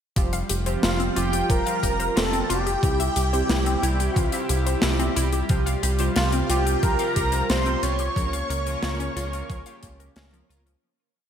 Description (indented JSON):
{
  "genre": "synthwave",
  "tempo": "90 BPM",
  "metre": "4/4",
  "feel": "straight",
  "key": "unclear",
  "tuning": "A4 = 440 Hz",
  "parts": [
    { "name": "chorused pulse-width pad", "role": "sustained chords", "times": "0.2-10.8 s", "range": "C3 to G4", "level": "-31 LUFS", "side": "equal", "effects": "sidechain pumping" },
    { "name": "analog pluck", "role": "arpeggios", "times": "0.2-10.7 s", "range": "E3 to F5", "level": "-32 LUFS", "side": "left 3 dB", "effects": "chorus, digital delay" },
    { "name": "chorused polysynth", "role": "stabs", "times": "0.2-10.6 s", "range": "C3 to Bb4", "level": "-31 LUFS", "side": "right 3 dB", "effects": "none" },
    { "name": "round analog bass", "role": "bass", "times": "0.2-10.8 s", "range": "F1 to Db2", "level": "-26 LUFS", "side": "equal", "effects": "tube saturation, sidechain pumping" },
    { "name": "electronic kick drum", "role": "drums", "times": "0.2-10.0 s", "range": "none", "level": "-24 LUFS", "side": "equal", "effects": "none" },
    { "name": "tight metal drum kit", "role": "drums", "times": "0.2-10.8 s", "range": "hi-hat, snare drum", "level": "-28 LUFS", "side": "left 1 dB", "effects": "none" },
    { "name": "wide unison lead", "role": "melody", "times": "0.8-10.5 s", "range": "F4 to Db5", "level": "-28 LUFS", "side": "equal", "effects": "cassette tape, ping-pong delay" },
    { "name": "string machine, violins", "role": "second line", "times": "0.8-10.5 s", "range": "F5 to Db6", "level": "-33 LUFS", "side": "equal", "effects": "ensemble chorus" }
  ],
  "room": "moderate lush hall reverb, RT60 1.7 s",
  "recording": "bright 1980s-style digital production",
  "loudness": "-21 LUFS",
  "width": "side -8 dB against mid",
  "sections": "0.2-10.8 verse",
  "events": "fade-out 7.3-10.8",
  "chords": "0.2 Fsus2; 2.8 C; 5.5 Fsus2/C; 8.2 Bbm/Db",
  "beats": "| 0.16 0.83 1.50 2.16 | 2.83 3.50 4.16 4.83 | 5.50 6.16 6.83 7.50 | 8.16 8.83 9.50 10.16"
}